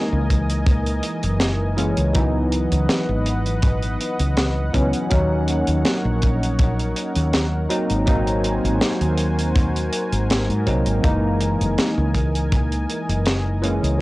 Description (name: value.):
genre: vaporwave.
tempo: 81 BPM.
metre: 4/4.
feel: swing 54% on 16ths.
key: unclear.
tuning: A4 = 440 Hz.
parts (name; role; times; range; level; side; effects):
barky tine electric piano; accompaniment; 0.0-14.0 s; E3 to D#4; -23 LUFS; equal; analog chorus, cassette tape, analog delay.
lush unison pad; sustained chords; 0.0-14.0 s; E3 to G#5; -28 LUFS; equal; chorus, vintage 12-bit sampler grit, cassette tape.
woody fretless electric bass; bass; 0.1-14.0 s; F#1 to G#2; -22 LUFS; equal; tube saturation.
kick drum; drums; 0.3-12.7 s; none; -20 LUFS; equal; vintage 12-bit sampler grit.
tight funk drum kit; drums; 0.3-14.0 s; hi-hat, snare drum; -24 LUFS; equal; vintage 12-bit sampler grit.
room: little or no reverb.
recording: home recording on cassette.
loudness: -18 LUFS.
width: side -19 dB against mid.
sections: 0.0-14.0 A section.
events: none.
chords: 0.0 F#13; 2.1 C#m11; 5.1 D#m7; 7.7 G#9; 11.0 F#13.